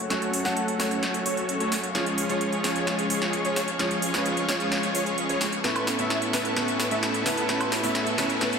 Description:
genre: EDM, festival progressive house.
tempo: 130 BPM.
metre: 4/4.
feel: straight.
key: unclear.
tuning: A4 = 439 Hz.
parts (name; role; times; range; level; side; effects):
bright baby grand piano; accompaniment; 0.0-8.6 s; A2 to B4; -31 LUFS; right 2 dB; digital delay.
warm chamber string section; sustained chords; 0.0-8.6 s; G#4 to C#6; -34 LUFS; left 1 dB; low-pass filter.
detuned saw bass; bass; 0.0-8.6 s; F#1 to F#2; -41 LUFS; left 1 dB; none.
plucky unison lead; arpeggios; 0.1-8.6 s; B4 to F#5; -32 LUFS; equal; ensemble chorus, digital delay.
supersaw chords; riff; 0.1-8.6 s; G#3 to F#5; -28 LUFS; equal; low-pass filter, digital delay.
big-room dance drum kit; drums; 0.1-8.6 s; hi-hat, snare drum, woodblock; -28 LUFS; equal; overdrive, high-pass filter on hats, high-pass filter on toms, high-pass filter on snare, high-pass filter on perc, high-pass filter on room.
riser; sound effects; 7.0-8.6 s; none; -38 LUFS; equal; none.
room: wet lush hall reverb, RT60 2.0 s.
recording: dense, heavily limited modern master.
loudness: -23 LUFS.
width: side -6 dB against mid.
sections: 0.0-8.6 A section.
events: build-up 0.0-8.6; drum fill 0.0-8.6; filter sweep on string section 0.0-8.6.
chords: 0.0 F#m; 2.0 C#; 5.6 Aadd9.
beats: | 0.10 0.57 1.03 1.49 | 1.95 2.41 2.87 3.33 | 3.80 4.26 4.72 5.18 | 5.64 6.10 6.57 7.03 | 7.49 7.95 8.41.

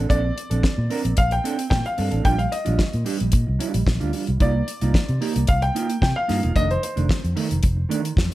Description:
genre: disco.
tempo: 112 BPM.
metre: 4/4.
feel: straight.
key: C dorian.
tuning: A4 = 440 Hz.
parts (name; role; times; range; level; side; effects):
mellow electric guitar; accompaniment; 0.0-8.3 s; Eb3 to Bb4; -26 LUFS; right 5 dB; none.
fingered electric bass; bass; 0.0-8.3 s; E1 to C3; -22 LUFS; equal; none.
warm baby grand piano; melody; 0.1-8.3 s; C5 to G5; -26 LUFS; left 1 dB; none.
damped 70s drum kit; drums; 0.1-8.3 s; hi-hat, kick drum, snare drum; -22 LUFS; equal; none.
room: light reverb, studio reverb.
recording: none.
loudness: -19 LUFS.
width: side -16 dB against mid.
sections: 0.0-8.3 A section.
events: none.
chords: 0.0 Bbmaj9; 2.2 Ebmaj9/Bb; 4.4 Cm11; 6.6 F6.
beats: | 0.10 0.63 1.17 1.71 | 2.25 2.79 3.32 3.86 | 4.40 4.94 5.48 6.01 | 6.55 7.09 7.63 8.17.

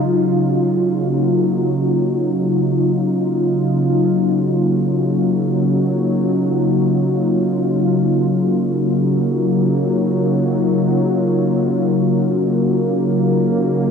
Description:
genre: ambient.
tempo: free time.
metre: none.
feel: none.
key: Eb minor.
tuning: A4 = 442 Hz.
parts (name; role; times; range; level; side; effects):
warm analog pad; solo; 0.0-13.9 s; Db3 to F4; -15 LUFS; equal; chorus, tape echo.
room: wet plate reverb, RT60 3.1 s.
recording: dreamy mix soaked in reverb, cassette tape.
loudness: -15 LUFS.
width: side -6 dB against mid.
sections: 0.1-13.9 A section.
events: none.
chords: 0.1 Ebm9.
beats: free time.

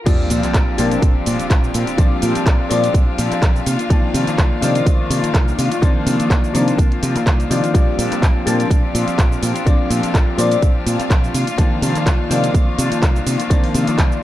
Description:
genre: filtered disco house.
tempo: 125 BPM.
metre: 4/4.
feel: swing 54% on 16ths.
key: Bb major.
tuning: A4 = 440 Hz.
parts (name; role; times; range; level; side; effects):
rich chamber violin section; sustained chords; 0.0-14.2 s; F4 to F5; -29 LUFS; left 3 dB; vintage 12-bit sampler grit, sidechain pumping, low-pass filter.
clear grand piano; accompaniment; 0.1-14.2 s; Eb3 to D4; -21 LUFS; left 2 dB; phaser, sidechain pumping, low-pass filter.
electric guitar at the edge of break-up; riff; 0.1-14.2 s; Eb3 to G4; -23 LUFS; left 1 dB; sidechain pumping, low-pass filter.
fingered electric bass; bass; 0.1-14.1 s; Bb1 to C3; -21 LUFS; right 1 dB; sidechain pumping, low-pass filter.
electronic kick drum; drums; 0.1-14.1 s; none; -15 LUFS; equal; studio reverb.
house drum kit; drums; 0.1-14.2 s; crash cymbal, handclaps, hi-hat, shaker; -25 LUFS; equal; sidechain pumping on hats, studio reverb, sidechain pumping on cymbals, sidechain pumping on perc.
sub drop; sound effects; 0.2-2.0 s; none; -27 LUFS; right 1 dB; none.
room: digital ambience.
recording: dark, warm production.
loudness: -14 LUFS.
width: side -14 dB against mid.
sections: 0.1-14.2 A section.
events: drop 0.1-14.2; impact 0.1-2.0.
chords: 0.1 Bb69; 3.7 Cm11; 7.7 Bb69; 11.3 Cm11.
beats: | 0.06 0.54 1.02 1.50 | 1.98 2.46 2.94 3.42 | 3.90 4.38 4.86 5.34 | 5.82 6.30 6.78 7.26 | 7.74 8.22 8.70 9.18 | 9.66 10.14 10.62 11.10 | 11.58 12.06 12.54 13.02 | 13.50 13.98.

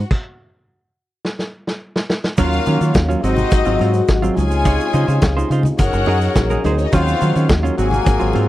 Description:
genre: disco.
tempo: 106 BPM.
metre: 4/4.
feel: straight.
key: Eb dorian.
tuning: A4 = 440 Hz.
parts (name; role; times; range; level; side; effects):
clear studio string section; second line; 0.0-8.5 s; Bb3 to Ab5; -24 LUFS; left 2 dB; none.
mellow French horn section; sustained chords; 0.0-8.5 s; C3 to F5; -23 LUFS; left 3 dB; none.
deep dub fingered electric bass; bass; 0.0-8.5 s; Gb1 to Eb3; -18 LUFS; equal; none.
vintage drum kit; drums; 0.1-8.5 s; crash cymbal, hi-hat, kick drum, snare drum; -16 LUFS; equal; none.
semi-hollow electric guitar; accompaniment; 2.4-8.5 s; Gb3 to Db5; -22 LUFS; right 5 dB; none.
warm horn section; stabs; 2.4-8.5 s; Bb3 to Db5; -24 LUFS; left 5 dB; none.
congas; percussion; 2.4-8.5 s; none; -27 LUFS; left 3 dB; none.
egg shaker; percussion; 2.4-8.3 s; none; -41 LUFS; right 15 dB; none.
room: little or no reverb.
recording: dry, close 1970s-style studio recording.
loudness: -14 LUFS.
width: side -15 dB against mid.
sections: 0.0-2.4 A section; 2.4-8.5 B section.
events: stop 0.1-2.4; drum fill 1.2-2.4.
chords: 0.0 N.C.; 2.4 Ebm9; 3.2 Ab6; 4.4 Dbmaj9; 5.8 Gb69; 6.9 Ebm9; 7.8 Ab13.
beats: | 0.11 0.68 1.25 1.81 | 2.38 2.95 3.52 4.08 | 4.65 5.22 5.79 6.36 | 6.92 7.49 8.06.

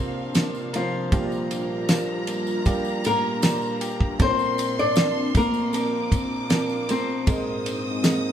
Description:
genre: pop ballad.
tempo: 78 BPM.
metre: 4/4.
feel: straight.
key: Bb mixolydian.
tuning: A4 = 442 Hz.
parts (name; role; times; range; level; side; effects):
flamenco guitar; melody; 0.0-8.3 s; F3 to D5; -26 LUFS; left 2 dB; none.
rich studio violin section; second line; 0.0-8.3 s; F5 to Eb6; -35 LUFS; left 1 dB; none.
warm grand piano; accompaniment; 0.0-8.3 s; Ab1 to C5; -29 LUFS; right 3 dB; none.
airy breathy pad; sustained chords; 0.0-8.3 s; Bb2 to F4; -31 LUFS; left 1 dB; chorus, phaser.
direct-recorded clean electric guitar; arpeggios; 0.0-8.3 s; Bb2 to Bb4; -35 LUFS; left 1 dB; none.
tambourine; percussion; 0.3-8.2 s; none; -41 LUFS; left 4 dB; none.
damped 70s drum kit; drums; 0.4-8.2 s; kick drum, ride cymbal, snare drum; -23 LUFS; equal; none.
room: wet small room reverb, RT60 0.6 s.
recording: band playing live in one room.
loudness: -21 LUFS.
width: side -9 dB against mid.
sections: 0.0-8.3 A section.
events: none.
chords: 0.0 Bbadd9; 1.1 Gm7/Bb; 4.2 Bbadd9; 7.3 Abadd9.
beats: 0.35 | 1.12 1.89 2.66 3.43 | 4.20 4.97 5.74 6.50 | 7.27 8.04.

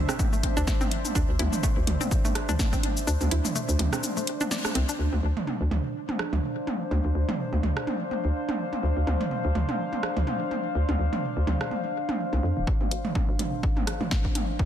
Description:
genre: minimal techno.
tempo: 125 BPM.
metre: 4/4.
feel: swing 56% on 16ths.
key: D minor.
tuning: A4 = 442 Hz.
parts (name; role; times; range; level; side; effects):
hollow knocking FM bass; bass; 0.0-14.7 s; D1 to F2; -26 LUFS; equal; sidechain pumping, high-pass filter.
warbly tape-like pad; texture; 0.0-14.7 s; D4 to F5; -32 LUFS; equal; chorus, built-in reverb, sidechain pumping.
hollow square pluck; riff; 0.1-4.9, 12.7-14.6 s; A3 to D5; -34 LUFS; equal; chorus, sidechain pumping, ping-pong delay.
house drum kit; drums; 0.1-5.0, 12.9-14.5 s; hi-hat, shaker, snare drum; -33 LUFS; left 2 dB; low-pass filter on hats, small room ambience, low-pass filter on perc, low-pass filter on snare.
minimal click drum kit; percussion; 0.1-14.7 s; rim click, toms; -30 LUFS; right 2 dB; small room ambience, soft clipping on snare, ping-pong delay.
electronic kick drum; drums; 0.2-2.8, 12.7-14.7 s; none; -26 LUFS; equal; small room ambience.
room: light reverb, digital ambience.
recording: dense, heavily limited modern master.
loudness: -24 LUFS.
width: side -10 dB against mid.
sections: 0.0-5.0 A section; 5.0-12.7 B section; 12.7-14.7 C section.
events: drop 0.0-5.0; kick drops out 3.1-5.0; band accent 4.5; build-up 12.7-14.7.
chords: 0.0 D7(no3); 5.0 Dm7.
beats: 0.19 0.67 | 1.15 1.63 2.11 2.59 | 3.07 3.55 4.03 4.51 | 4.99 5.47 5.95 6.43 | 6.91 7.39 7.87 8.35 | 8.83 9.31 9.79 10.27 | 10.75 11.23 11.71 12.19 | 12.67 13.15 13.63 14.11 | 14.59.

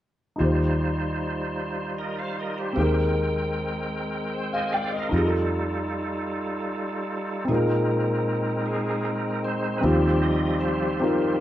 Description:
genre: gospel.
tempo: 51 BPM (dotted quarters).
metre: 6/8.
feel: straight.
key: Eb major.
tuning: A4 = 440 Hz.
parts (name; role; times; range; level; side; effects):
warm grand piano; accompaniment; 0.4-11.4 s; Bb2 to G5; -26 LUFS; equal; none.
bright tonewheel organ; sustained chords; 0.4-11.4 s; F3 to Ab5; -28 LUFS; right 1 dB; overdrive, chorus vibrato, fast rotary speaker.
fingered electric bass; bass; 0.4-11.4 s; Eb2 to F2; -27 LUFS; equal; none.
room: moderate large studio reverb, RT60 0.9 s.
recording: band playing live in one room.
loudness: -23 LUFS.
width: side -13 dB against mid.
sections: 0.4-9.8 A section; 9.8-11.4 B section.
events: tonewheel organ fill 4.0-5.1; tonewheel organ solo 9.8-11.4.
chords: 0.4 Eb69; 2.8 Abmaj9/Eb; 5.1 F9; 7.5 Bb9sus4; 9.8 Eb69.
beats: | 0.40 1.59 | 2.77 3.95 | 5.13 6.31 | 7.49 8.67 | 9.85 11.02.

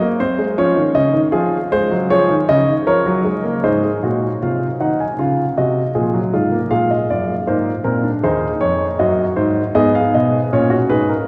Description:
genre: classical, baroque-style 4-part fugue for grand piano.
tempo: 78 BPM.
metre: 4/4.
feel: straight.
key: Db major.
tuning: A4 = 440 Hz.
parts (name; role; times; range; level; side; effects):
dark grand piano; solo; 0.0-11.3 s; Eb2 to Ab5; -17 LUFS; equal; none.
room: wet cathedral reverb, RT60 6.9 s.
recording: recorded in a church or concert hall, vinyl crackle, nothing above 10.8 kHz.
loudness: -17 LUFS.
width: mono.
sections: 0.0-3.6 A section; 3.6-11.3 B section.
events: none.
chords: 0.0 Ab; 0.6 Db; 3.6 Ab7; 5.2 Db; 6.7 Bb7; 8.2 Ebm; 9.8 Abm.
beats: | 0.57 1.33 2.10 2.87 | 3.64 4.41 5.18 5.95 | 6.71 7.47 8.23 8.99 | 9.76 10.52.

